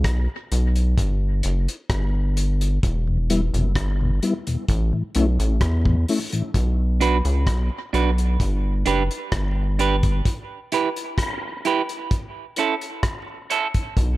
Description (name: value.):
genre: dub reggae.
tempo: 65 BPM.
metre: 4/4.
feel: straight.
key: unclear.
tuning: A4 = 438 Hz.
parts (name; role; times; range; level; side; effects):
rubbery square bass; bass; 0.0-14.2 s; E1 to E2; -20 LUFS; equal; none.
cloth-damped thuddy drum kit; drums; 0.0-14.2 s; hi-hat, kick drum, rim click; -25 LUFS; equal; none.
mellow tonewheel organ; accompaniment; 3.1-6.4 s; E2 to E4; -24 LUFS; left 2 dB; chorus vibrato, dub echo.
clean electric guitar; accompaniment; 7.0-13.7 s; C#4 to B4; -24 LUFS; right 6 dB; high-pass filter, dub echo.
room: light reverb, studio reverb.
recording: none.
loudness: -20 LUFS.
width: side -18 dB against mid.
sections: 0.0-6.5 A section; 6.5-14.2 B section.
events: break 0.0-6.5, 10.3-14.0; filter sweep on clean electric guitar 10.3-14.2.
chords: 0.0 N.C.; 2.8 Em; 4.7 A5; 6.5 Bm; 8.4 G; 10.3 Em; 12.1 A.